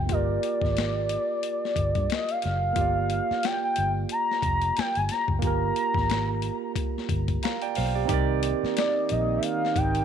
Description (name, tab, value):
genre	R&B, neo-soul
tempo	90 BPM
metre	4/4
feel	swing 57% on 16ths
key	unclear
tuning	A4 = 443 Hz
part	gliding portamento lead	melody	0.0-10.0 s	D5 to Bb5	-27 LUFS	left 1 dB	chorus
part	barky tine electric piano	accompaniment	0.0-10.0 s	Bb3 to Bb5	-30 LUFS	right 13 dB	overdrive
part	vintage muted fingered electric bass	bass	0.0-10.0 s	F1 to G2	-28 LUFS	left 1 dB	none
part	boom bap sampler-style drum kit	drums	0.1-10.0 s	hi-hat, kick drum, snare drum	-30 LUFS	left 5 dB	none
part	warm analog pad	sustained chords	8.1-10.0 s	Eb3 to Eb4	-34 LUFS	left 1 dB	chorus, tremolo
room	light reverb, digital ambience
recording	1960s-style stereo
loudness	-24 LUFS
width	side -8 dB against mid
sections	0.0-8.1 A section; 8.1-10.0 B section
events	none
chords	0.0 Gm7; 8.1 Cm9